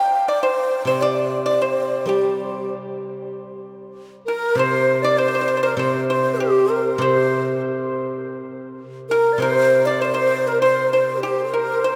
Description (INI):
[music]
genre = chinese traditional, Chinese chamber ensemble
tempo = 99 BPM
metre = 4/4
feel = rubato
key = unclear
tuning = A4 = 440 Hz
[part]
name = breathy low xiao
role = melody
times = 0.0-12.0 s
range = G4 to G5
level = -23 LUFS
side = equal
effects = none
[part]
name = pipa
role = second line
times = 0.0-12.0 s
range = G4 to G5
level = -26 LUFS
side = equal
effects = none
[part]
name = steel-string zither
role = accompaniment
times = 0.8-11.2 s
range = C3 to G3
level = -28 LUFS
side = equal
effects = none
[part]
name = large dizi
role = second line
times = 4.3-12.0 s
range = G4 to D5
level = -25 LUFS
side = equal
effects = none
[sound]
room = wet cathedral reverb, RT60 5.6 s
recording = in a vast, echoing space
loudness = -19 LUFS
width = mono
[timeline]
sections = 0.0-3.3 A section; 3.3-12.0 B section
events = none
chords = none